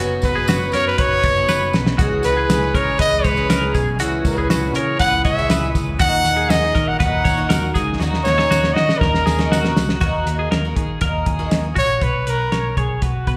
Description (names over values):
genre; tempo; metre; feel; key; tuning
jangly indie pop; 120 BPM; 4/4; straight; unclear; A4 = 440 Hz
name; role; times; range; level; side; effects
vibraphone with medium hard mallets; second line; 0.0-10.0 s; D#4 to G#4; -31 LUFS; equal; analog delay
picked twelve-string acoustic guitar; accompaniment; 0.0-12.0 s; C#3 to G#4; -30 LUFS; equal; none
warm analog pad; sustained chords; 0.0-10.0 s; A#2 to D#4; -35 LUFS; equal; none
twelve-string electric guitar; arpeggios; 0.0-13.4 s; F#4 to C#5; -27 LUFS; equal; tremolo
vintage muted picked electric bass; bass; 0.0-13.4 s; F#1 to D#3; -25 LUFS; equal; none
warm trumpet; melody; 0.2-13.4 s; F#4 to F#5; -22 LUFS; equal; none
cloth-damped thuddy drum kit; drums; 0.2-13.4 s; hi-hat, kick drum, snare drum; -23 LUFS; equal; none
tambourine; percussion; 0.2-9.9 s; none; -38 LUFS; equal; none
room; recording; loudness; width
light reverb, small room ambience; live gig heard through the venue's PA, club reverb; -18 LUFS; mono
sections
0.0-10.0 A section; 10.0-12.0 B section; 12.0-13.4 C section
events
drum fill 1.5-2.0, 8.0-10.0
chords
0.0 Badd9; 2.0 C#m; 6.0 D#m; 12.0 Bsus2